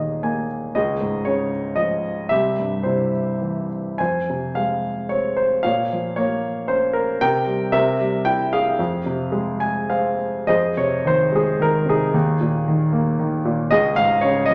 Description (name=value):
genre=classical, lyrical solo piano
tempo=100-118 BPM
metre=3/4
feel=rubato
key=F minor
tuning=A4 = 440 Hz
part: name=clear grand piano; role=solo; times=0.0-14.5 s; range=C2 to Ab5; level=-21 LUFS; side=equal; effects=none
room=moderate recital hall reverb, RT60 1.6 s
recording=none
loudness=-21 LUFS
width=mono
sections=0.0-10.5 A section; 10.5-14.5 B section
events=grand piano fill 0.0-0.8, 9.3-10.5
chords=0.0 Absus2/Eb; 0.8 Db; 2.3 C; 4.0 Fm; 5.6 Bbm; 7.2 C5; 7.7 C7; 8.8 Fm; 10.5 Fm7; 12.1 Absus2/Eb; 13.7 Db